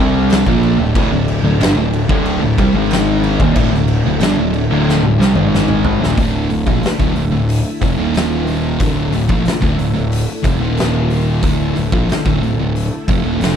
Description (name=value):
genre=stoner and doom metal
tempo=92 BPM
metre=4/4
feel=straight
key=D minor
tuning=A4 = 440 Hz
part: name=string machine, violins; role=sustained chords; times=0.0-13.6 s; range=D3 to E5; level=-26 LUFS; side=left 1 dB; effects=phaser, ensemble chorus
part: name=raw garage guitar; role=riff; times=0.0-6.2 s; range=D2 to C4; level=-18 LUFS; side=right 1 dB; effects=overdrive
part: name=thick fuzz guitar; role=riff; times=0.0-13.6 s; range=D2 to C4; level=-20 LUFS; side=left 9 dB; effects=distortion
part: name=thick fuzz guitar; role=riff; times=0.0-13.6 s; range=D2 to C4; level=-19 LUFS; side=right 8 dB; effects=distortion
part: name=fuzz picked electric bass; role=bass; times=0.0-13.6 s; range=D1 to C2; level=-20 LUFS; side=equal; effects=overdrive
part: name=oversized low-tuned drum kit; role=drums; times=0.3-13.6 s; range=crash cymbal, hi-hat, kick drum, snare drum, toms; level=-19 LUFS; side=equal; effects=none
room=small room ambience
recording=none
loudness=-13 LUFS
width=side -8 dB against mid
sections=0.0-6.2 A section; 6.2-13.6 B section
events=drum fill 4.9-6.2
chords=0.0 Dm; 2.7 G#5; 3.4 D5; 5.4 G#5; 6.0 D5; 6.2 Dm; 8.0 Eb5; 8.8 Dm; 10.6 Eb5; 11.4 Dm